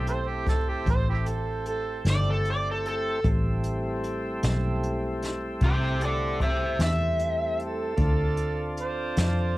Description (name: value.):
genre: slow blues.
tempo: 51 BPM (dotted quarters).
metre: 12/8.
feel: straight.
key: A minor.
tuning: A4 = 440 Hz.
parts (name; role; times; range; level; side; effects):
mellow harmonica; second line; 0.0-9.6 s; C4 to C5; -31 LUFS; right 5 dB; overdrive.
tonewheel organ; sustained chords; 0.0-9.6 s; G3 to A4; -32 LUFS; equal; slow rotary speaker.
vintage muted fingered electric bass; bass; 0.0-9.6 s; G1 to F2; -28 LUFS; equal; none.
jazz brush drum kit; drums; 0.1-9.4 s; hi-hat, kick drum, snare drum; -29 LUFS; equal; none.
overdriven slide guitar; melody; 2.1-7.6 s; G4 to E5; -27 LUFS; equal; cassette tape.
room: small room ambience.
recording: home recording on cassette.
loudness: -24 LUFS.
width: side -18 dB against mid.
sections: 0.0-9.6 A section.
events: none.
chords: 0.0 Am7; 8.0 Dm7.